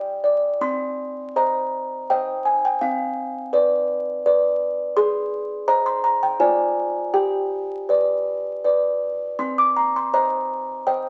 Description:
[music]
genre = classical, lullaby for music box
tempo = 82 BPM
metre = 3/4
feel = rubato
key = C minor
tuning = A4 = 440 Hz
[part]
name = music box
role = solo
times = 0.0-11.1 s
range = C4 to D6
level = -22 LUFS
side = equal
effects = none
[sound]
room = moderate studio reverb, RT60 0.8 s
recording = very old 78 rpm record, vinyl crackle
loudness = -22 LUFS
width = mono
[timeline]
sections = 0.6-11.1 A section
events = none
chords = 0.0 G5; 0.6 Cm; 2.8 Bdim; 5.0 Ab; 6.4 Dm7b5/F; 7.1 G; 9.4 Cm

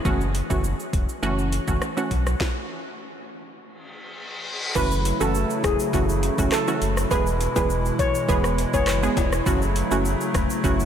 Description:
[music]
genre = dancehall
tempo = 102 BPM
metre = 4/4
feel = straight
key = F# minor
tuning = A4 = 440 Hz
[part]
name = punchy chord stab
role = accompaniment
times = 0.0-10.9 s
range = E3 to G#4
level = -27 LUFS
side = right 2 dB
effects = chorus, sidechain pumping
[part]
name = sub bass with octave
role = bass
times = 0.1-10.9 s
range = E1 to B1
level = -26 LUFS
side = equal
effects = none
[part]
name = island pop drum kit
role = drums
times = 0.1-10.9 s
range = crash cymbal, handclaps, hi-hat, kick drum, rim click, shaker, snare drum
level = -27 LUFS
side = equal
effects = none
[part]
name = reverse cymbal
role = sound effects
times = 3.9-4.8 s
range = none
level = -34 LUFS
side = left 2 dB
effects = none
[part]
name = steel pan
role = melody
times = 4.8-8.9 s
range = G#4 to C#5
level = -26 LUFS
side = equal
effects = tape echo
[part]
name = hollow soft pad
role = sustained chords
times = 4.8-10.9 s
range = C#3 to E4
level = -27 LUFS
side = equal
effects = chorus, sidechain pumping
[part]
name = tube shaker and timbales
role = percussion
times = 4.8-10.9 s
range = none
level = -36 LUFS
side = left 6 dB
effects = none
[sound]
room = moderate cathedral reverb, RT60 5.3 s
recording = dreamy mix soaked in reverb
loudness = -20 LUFS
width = side -9 dB against mid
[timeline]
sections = 0.0-4.8 A section; 4.8-10.9 B section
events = stop 2.4-4.8; reverse cymbal 3.9-4.8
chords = 0.1 F#m7; 2.4 N.C.; 4.8 F#m7; 7.1 E; 9.5 F#m7

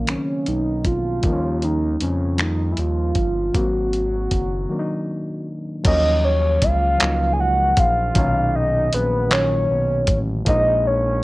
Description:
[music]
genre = slow six-eight R&B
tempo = 52 BPM (dotted quarters)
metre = 6/8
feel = straight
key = unclear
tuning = A4 = 439 Hz
[part]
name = soft octave-layered synth lead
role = melody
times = 0.0-11.2 s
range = A#3 to G#5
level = -21 LUFS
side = equal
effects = chorus, phaser, slapback echo
[part]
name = overdriven reed electric piano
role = accompaniment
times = 0.0-11.2 s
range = A#2 to D#4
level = -26 LUFS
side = left 1 dB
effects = none
[part]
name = smooth gliding synth bass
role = bass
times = 0.0-11.2 s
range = F#1 to E#2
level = -22 LUFS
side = equal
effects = none
[part]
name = dusty soul sampler-style drum kit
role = drums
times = 0.1-10.6 s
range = crash cymbal, finger snaps, handclaps, hi-hat, kick drum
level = -21 LUFS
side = equal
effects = none
[sound]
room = light reverb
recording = worn, warbling old tape, cassette tape, warbly pitch drift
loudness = -17 LUFS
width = side -19 dB against mid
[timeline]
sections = 0.0-5.9 A section; 5.9-11.2 B section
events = break 4.7-5.9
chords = 0.0 Bmaj9; 1.2 D#7; 3.5 G#9; 5.9 D#m9; 8.2 Bmaj9; 10.5 F#maj13 (rootless)

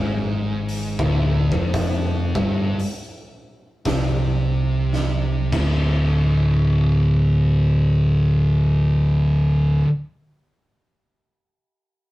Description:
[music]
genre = stoner and doom metal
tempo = 57 BPM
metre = 4/4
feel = swing 58% on 8ths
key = D minor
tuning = A4 = 440 Hz
[part]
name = fuzz guitar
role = riff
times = 0.0-9.9 s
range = D2 to D3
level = -19 LUFS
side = equal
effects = distortion
[part]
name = overdriven picked electric bass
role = bass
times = 0.0-9.8 s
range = D1 to C2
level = -22 LUFS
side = equal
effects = none
[part]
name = oversized low-tuned drum kit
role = drums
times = 0.7-5.7 s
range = crash cymbal, hi-hat, kick drum, snare drum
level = -26 LUFS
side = equal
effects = none
[sound]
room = moderate studio reverb, RT60 0.5 s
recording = rough rehearsal-room recording, warm saturation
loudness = -17 LUFS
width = side -17 dB against mid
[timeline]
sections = 0.0-6.0 A section; 6.0-10.2 B section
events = drum fill 4.9-6.0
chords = 0.0 Dm; 5.4 D5

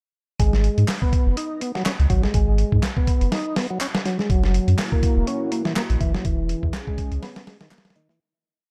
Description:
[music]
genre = breakbeat, breaks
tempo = 123 BPM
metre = 4/4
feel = swing 56% on 16ths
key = G# minor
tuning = A4 = 440 Hz
[part]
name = percussive tonewheel organ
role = riff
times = 0.4-8.2 s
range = D#3 to D#4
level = -29 LUFS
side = equal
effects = overdrive, chorus vibrato, slow rotary speaker, delay
[part]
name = saturated sub bass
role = bass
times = 0.4-7.2 s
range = E1 to G#2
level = -22 LUFS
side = equal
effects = none
[part]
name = dusty soul sampler-style drum kit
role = drums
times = 0.4-8.2 s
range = hi-hat, kick drum, snare drum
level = -25 LUFS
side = equal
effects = studio reverb
[part]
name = electronic handclaps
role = drums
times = 0.9-7.8 s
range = none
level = -35 LUFS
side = equal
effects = studio reverb
[part]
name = dark analog pad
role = sustained chords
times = 4.3-8.2 s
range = A#3 to G#4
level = -33 LUFS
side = equal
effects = chorus, sidechain pumping
[sound]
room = little or no reverb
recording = dark, warm production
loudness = -22 LUFS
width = mono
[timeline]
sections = 0.4-8.2 groove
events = fade-out 5.6-8.2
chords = 0.4 G#m7; 4.3 F#7; 6.3 E6

